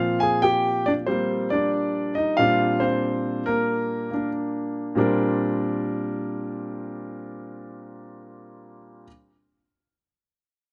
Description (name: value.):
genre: solo jazz.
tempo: 92 BPM.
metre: 4/4.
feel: swing 68% on 8ths.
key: Bb major.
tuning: A4 = 440 Hz.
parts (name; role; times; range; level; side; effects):
clear grand piano; solo; 0.0-9.1 s; Bb2 to Ab5; -25 LUFS; equal; slapback echo.
room: little or no reverb.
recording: recorded outdoors, with no room sound, nothing above 11.0 kHz.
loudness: -24 LUFS.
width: mono.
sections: 0.0-5.0 A section; 5.0-7.6 B section.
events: none.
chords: 0.0 Bb69.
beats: 0.43 1.08 1.73 | 2.38 3.03 3.68 4.33 | 4.97 5.62 6.27 6.92.